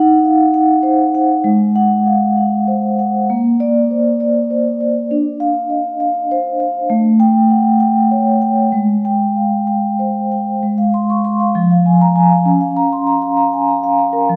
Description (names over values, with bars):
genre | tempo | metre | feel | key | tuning
classical, contemporary piece for solo vibraphone | 66 BPM (dotted quarters) | 6/8 | rubato | Ab major from 6.9 s | A4 = 441 Hz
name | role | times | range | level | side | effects
vibraphone with soft mallets | solo | 0.0-14.4 s | F3 to Db6 | -14 LUFS | equal | none
room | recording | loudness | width
wet recital hall reverb, RT60 1.6 s | dark, warm production | -15 LUFS | mono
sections
0.0-10.6 A section; 10.6-14.4 B section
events
none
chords
0.0 Ebm6; 1.5 Ab7; 3.3 Bbadd9; 5.1 Dm7; 6.9 A7; 8.7 Abmaj7; 10.6 Ab6; 11.6 Fm; 12.5 Db6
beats
0.55 | 1.45 2.38 | 3.30 4.21 | 5.11 6.01 | 6.90 7.81 | 8.73 9.67 | 10.63 11.56 | 12.47 13.38 | 14.28